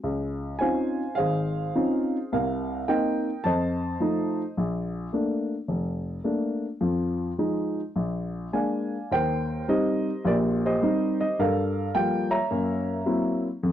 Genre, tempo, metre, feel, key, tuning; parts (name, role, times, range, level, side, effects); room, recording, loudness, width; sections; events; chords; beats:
solo jazz; 106 BPM; 4/4; swing 67% on 8ths, rubato; Bb major, Eb major from 9.1 s; A4 = 440 Hz
warm upright piano; solo; 0.0-13.7 s; F1 to Bb5; -24 LUFS; equal
little or no reverb; dry, close 1970s-style studio recording; -24 LUFS; side -11 dB against mid
0.0-9.1 A section; 9.1-13.7 B section
0.0 Dbmaj9; 2.3 Cm7; 3.5 F7; 4.6 Bbmaj7; 6.8 Fm7; 8.0 Bb7; 9.1 Eb6; 11.4 Gm9; 12.5 Gb7#11
| 0.04 0.61 1.19 1.76 | 2.33 2.89 3.46 4.02 | 4.58 5.14 5.70 6.26 | 6.82 7.39 7.96 8.54 | 9.12 9.69 10.26 10.82 | 11.39 11.95 12.51 13.07 | 13.63